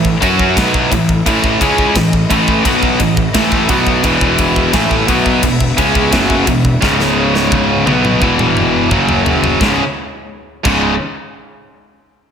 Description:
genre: heavy metal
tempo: 86 BPM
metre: 4/4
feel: straight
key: C# minor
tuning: A4 = 440 Hz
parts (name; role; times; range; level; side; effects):
- rich chamber string section; sustained chords; 0.0-9.9 s; E3 to E5; -25 LUFS; left 1 dB; none
- high-gain distorted guitar; riff; 0.0-10.9 s; C#2 to F#4; -16 LUFS; left 8 dB; distortion, slapback echo
- overdriven electric guitar; riff; 0.0-10.9 s; C#2 to F#4; -19 LUFS; equal; none
- tight distorted guitar; riff; 0.0-10.9 s; C#2 to F#4; -17 LUFS; right 8 dB; distortion, slapback echo
- fuzz picked electric bass; bass; 0.0-11.0 s; C#1 to F#2; -20 LUFS; equal; overdrive
- tight metal drum kit; drums; 0.0-10.8 s; crash cymbal, kick drum, ride cymbal, snare drum, toms; -18 LUFS; equal; none
room: moderate lush hall reverb, RT60 2.1 s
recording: big arena sound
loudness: -10 LUFS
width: side -7 dB against mid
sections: 0.0-9.6 A section; 9.6-12.3 B section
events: drum fill 6.8-9.6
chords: 0.0 A5; 4.0 E5; 6.8 C#5; 7.9 E5; 8.9 F#5; 9.6 C#5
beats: 0.57 | 1.26 1.96 2.65 3.35 | 4.04 4.74 5.43 6.13 | 6.83 7.52 8.21 8.91 | 9.61 10.30

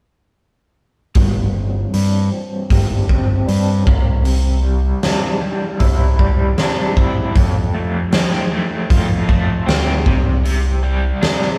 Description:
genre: psychedelic rock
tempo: 78 BPM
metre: 4/4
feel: straight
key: unclear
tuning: A4 = 440 Hz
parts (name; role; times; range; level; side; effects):
- raw garage drum kit; drums; 1.1-11.5 s; hi-hat, kick drum, snare drum; -20 LUFS; equal; none
- crunchy overdriven guitar; riff; 1.2-11.6 s; F2 to G4; -24 LUFS; equal; tremolo, low-pass filter
- growling picked electric bass; bass; 1.2-11.6 s; G1 to F3; -20 LUFS; equal; overdrive
room: light reverb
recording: band playing live in one room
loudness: -17 LUFS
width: mono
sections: 1.2-11.6 A section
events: filter sweep on overdriven electric guitar 1.2-11.6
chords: 1.2 Gsus4; 3.9 Cadd9; 7.4 F; 10.1 Csus2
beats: | 1.16 1.93 2.71 3.48 | 4.26 5.03 5.80 6.58 | 7.35 8.12 8.90 9.67 | 10.45 11.22

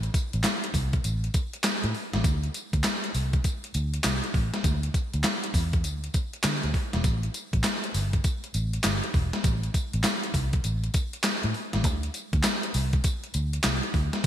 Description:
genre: R&B, new jack swing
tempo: 100 BPM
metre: 4/4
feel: swing 64% on 16ths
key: unclear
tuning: A4 = 440 Hz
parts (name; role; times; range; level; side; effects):
- vintage muted fingered electric bass; bass; 0.0-14.3 s; E1 to D3; -27 LUFS; equal; none
- gated 80s digital drum machine; drums; 0.0-14.3 s; handclaps, hi-hat, kick drum, snare drum, tambourine; -26 LUFS; equal; gated reverb, gated reverb snare, overdrive
room: light reverb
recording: bright 1980s-style digital production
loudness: -24 LUFS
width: side -11 dB against mid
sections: 0.0-14.3 A section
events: none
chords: none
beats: 0.44 1.04 1.64 | 2.24 2.84 3.44 4.04 | 4.64 5.24 5.84 6.44 | 7.04 7.64 8.24 8.84 | 9.44 10.04 10.64 11.24 | 11.84 12.44 13.04 13.64 | 14.24

